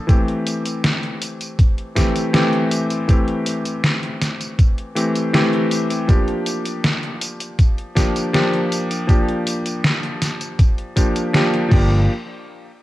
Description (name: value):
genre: vaporwave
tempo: 80 BPM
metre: 4/4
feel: straight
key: G dorian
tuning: A4 = 440 Hz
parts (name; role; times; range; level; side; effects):
- warm electric grand piano; accompaniment; 0.0-12.1 s; E3 to A4; -20 LUFS; left 1 dB; wide subtle chorus, analog delay
- detuned 8-bit digital drum machine; drums; 0.1-11.9 s; crash cymbal, hi-hat, snare drum, tambourine; -22 LUFS; equal; studio ambience, gated reverb
- electronic kick drum; drums; 0.1-11.9 s; none; -15 LUFS; equal; studio ambience
- slap bass with an envelope filter; bass; 11.7-12.1 s; G1; -16 LUFS; equal; none
room: light reverb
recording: cassette tape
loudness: -16 LUFS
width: side -16 dB against mid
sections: 0.0-12.1 A section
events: none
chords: 0.1 Am7; 6.1 Gm7; 12.1 N.C.